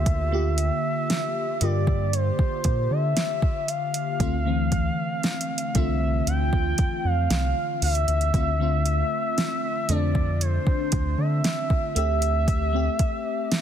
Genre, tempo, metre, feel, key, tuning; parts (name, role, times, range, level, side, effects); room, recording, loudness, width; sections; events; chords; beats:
contemporary R&B; 58 BPM; 4/4; straight; D minor; A4 = 440 Hz
gliding portamento lead; melody; 0.0-13.6 s; C5 to G5; -28 LUFS; equal; chorus, phaser, tape echo
FM electric piano with soft pad layer; accompaniment; 0.0-13.6 s; D3 to G4; -28 LUFS; left 2 dB; chorus, phaser
round analog bass; bass; 0.0-12.9 s; C2 to D3; -24 LUFS; equal
smooth R&B drum kit; drums; 0.1-13.6 s; hi-hat, kick drum, snare drum; -25 LUFS; equal; overdrive
digital ambience; dense, heavily limited modern master; -22 LUFS; side -9 dB against mid
0.0-13.6 A section
0.0 Dm11; 4.2 Fmaj13; 8.3 Dm7; 12.0 Am7/D
| 0.06 1.10 2.13 3.17 | 4.20 5.24 6.27 7.30 | 8.34 9.37 10.41 11.44 | 12.48 13.51